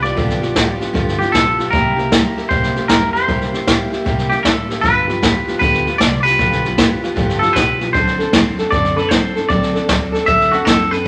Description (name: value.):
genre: rockabilly.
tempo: 154 BPM.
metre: 4/4.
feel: swing 65% on 8ths.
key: G mixolydian.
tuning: A4 = 440 Hz.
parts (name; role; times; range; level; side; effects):
twangy electric guitar; melody; 0.0-11.1 s; F#4 to E5; -20 LUFS; equal; none.
picked steel-string acoustic guitar; accompaniment; 0.0-11.1 s; G2 to A4; -22 LUFS; equal; none.
upright bass; bass; 0.0-11.1 s; G1 to Bb2; -30 LUFS; equal; none.
jazz brush drum kit; drums; 0.0-11.1 s; hi-hat, kick drum, snare drum; -20 LUFS; equal; none.
room: moderate large studio reverb, RT60 1.2 s.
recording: none.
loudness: -16 LUFS.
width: mono.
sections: 0.0-11.1 A section.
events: none.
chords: 0.0 G7; 1.7 C7; 4.8 G7; 7.9 D7.